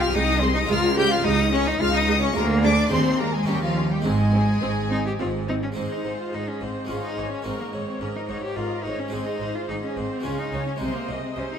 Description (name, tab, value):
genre	classical, baroque-style concerto movement with solo episodes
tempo	107 BPM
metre	3/4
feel	straight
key	Ab major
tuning	A4 = 440 Hz
part	rich cello	melody	0.0-11.6 s	F3 to G4	-26 LUFS	left 2 dB	none
part	rich chamber violin section	melody	0.0-11.6 s	F5 to G6	-29 LUFS	left 3 dB	none
part	rich studio violin section	second line	0.0-11.6 s	F4 to Ab5	-32 LUFS	left 3 dB	none
part	harpsichord	accompaniment	0.0-11.6 s	C2 to Bb4	-32 LUFS	right 1 dB	none
part	rich chamber double bass section	bass	0.0-11.4 s	Ab1 to Eb2	-28 LUFS	right 3 dB	none
part	rich symphonic cello section	bass	0.0-11.4 s	C2 to Db3	-28 LUFS	right 3 dB	none
part	rich symphonic viola section	accompaniment	0.1-11.6 s	Ab3 to Eb5	-31 LUFS	right 2 dB	none
room	moderate scoring stage reverb, RT60 1.9 s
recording	minimal, uncompressed stereo recording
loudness	-21 LUFS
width	side -8 dB against mid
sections	0.0-5.8 A section; 5.8-11.6 B section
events	none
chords	0.0 Ab/C; 0.7 Bbm7/Db; 2.4 Bb7/D; 2.9 Ab/Eb; 3.5 Eb5; 4.0 Ab; 6.9 Db/Ab; 7.5 Eb7/Ab; 9.1 Ab; 10.2 Db; 10.8 Ab/C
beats	0.14 | 0.69 1.25 1.80 | 2.36 2.92 3.48 | 4.05 4.62 5.20 | 5.77 6.33 6.89 | 7.46 8.01 8.57 | 9.13 9.69 10.25 | 10.81 11.36